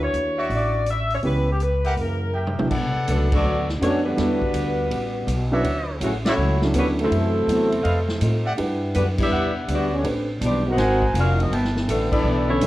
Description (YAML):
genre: jazz, big band swing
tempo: 164 BPM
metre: 4/4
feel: swing 66% on 8ths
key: B minor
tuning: A4 = 441 Hz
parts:
  - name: dark saxophone section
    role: melody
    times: 0.0-12.7 s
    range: E3 to F#5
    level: -25 LUFS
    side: left 1 dB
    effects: none
  - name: warm baby grand piano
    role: accompaniment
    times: 0.0-10.3, 12.6-12.7 s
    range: E3 to F#5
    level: -26 LUFS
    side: right 1 dB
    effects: none
  - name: upright bass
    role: bass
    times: 0.0-12.7 s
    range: E#1 to A2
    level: -24 LUFS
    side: equal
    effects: none
  - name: swinging big-band drum kit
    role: drums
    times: 0.1-12.7 s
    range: crash cymbal, hi-hat, kick drum, ride cymbal, snare drum, toms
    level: -30 LUFS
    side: equal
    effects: none
  - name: warm trumpet section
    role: stabs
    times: 0.4-12.5 s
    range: F#4 to C#6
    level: -28 LUFS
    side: equal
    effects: none
  - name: clear trombone section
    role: second line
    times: 2.0-12.7 s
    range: A2 to F#4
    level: -26 LUFS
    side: right 1 dB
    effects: none
room: moderate recital hall reverb, RT60 1.4 s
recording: worn, warbling old tape, cassette tape, warbly pitch drift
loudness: -19 LUFS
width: side -16 dB against mid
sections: 0.0-2.7 A section; 2.7-12.7 B section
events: drum fill 2.3-2.7; band accent 3.3, 6.2, 9.1, 12.1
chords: 0.0 Dmaj9; 1.2 C#m7b5; 2.0 F#7b9; 2.7 Bm7; 4.2 Em11; 4.9 A13; 5.6 Dmaj9; 7.1 F#m7b5; 7.8 F7#11; 8.6 Em9; 10.0 Am11; 10.8 G#9; 11.5 G69